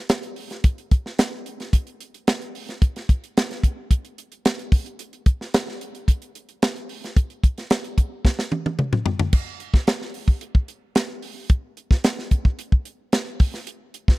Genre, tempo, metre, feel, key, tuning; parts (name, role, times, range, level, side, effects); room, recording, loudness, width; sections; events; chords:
jazz; 110 BPM; 4/4; straight
tight funk drum kit; drums; 0.1-14.2 s; crash cymbal, hi-hat, kick drum, snare drum, toms; -19 LUFS; equal
little or no reverb; dry, close 1970s-style studio recording; -20 LUFS; side -20 dB against mid
0.0-9.3 A section; 9.3-14.2 B section
drum fill 8.2-9.3